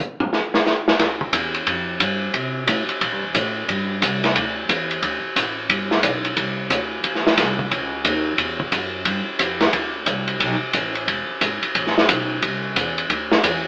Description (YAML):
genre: jazz, big band swing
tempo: 179 BPM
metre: 4/4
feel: swing 64% on 8ths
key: G major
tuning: A4 = 440 Hz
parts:
  - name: vintage drum kit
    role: drums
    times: 0.2-13.5 s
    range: hi-hat, kick drum, ride cymbal, snare drum, toms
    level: -22 LUFS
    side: equal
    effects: none
  - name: upright bass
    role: bass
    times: 1.0-13.7 s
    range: E1 to C3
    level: -30 LUFS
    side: equal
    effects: none
room: moderate echo chamber reverb, RT60 1.3 s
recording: heard from further back in the room, AM radio sound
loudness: -21 LUFS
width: mono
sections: 1.0-13.7 A section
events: none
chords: none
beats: 0.33 0.66 | 1.00 1.33 1.67 2.00 | 2.34 2.67 3.01 3.35 | 3.68 4.02 4.35 4.69 | 5.03 5.36 5.70 6.03 | 6.37 6.71 7.04 7.38 | 7.71 8.05 8.38 8.72 | 9.06 9.39 9.73 10.07 | 10.40 10.74 11.07 11.41 | 11.75 12.09 12.42 12.76 | 13.10 13.43